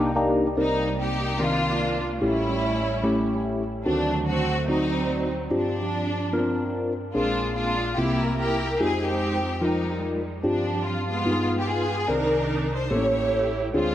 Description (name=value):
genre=gospel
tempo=146 BPM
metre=4/4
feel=swing 56% on 8ths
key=C minor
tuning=A4 = 440 Hz
part: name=rich symphonic string section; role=melody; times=0.0-13.9 s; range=F3 to C#5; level=-26 LUFS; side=right 1 dB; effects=analog delay
part: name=bright tine electric piano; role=accompaniment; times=0.0-13.9 s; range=A1 to Bb5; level=-24 LUFS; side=left 1 dB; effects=phaser, analog delay
room=moderate plate reverb, RT60 2.4 s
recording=echo-heavy mix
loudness=-22 LUFS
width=side -12 dB against mid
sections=0.6-13.9 A section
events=tine electric piano fill 0.0-0.6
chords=0.0 Cm9; 2.2 A7; 3.9 D7b9; 5.5 G7sus4; 7.2 Bb9; 8.0 C7; 8.8 Fm9; 10.4 G7sus4; 11.3 G7b9b13; 12.1 Cm9; 12.9 A7b9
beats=0.16 | 0.57 0.98 1.39 1.80 | 2.21 2.63 3.04 3.45 | 3.86 4.27 4.68 5.09 | 5.50 5.92 6.33 6.74 | 7.15 7.56 7.97 8.38 | 8.80 9.21 9.62 10.03 | 10.44 10.85 11.27 11.68 | 12.09 12.50 12.91 13.32 | 13.73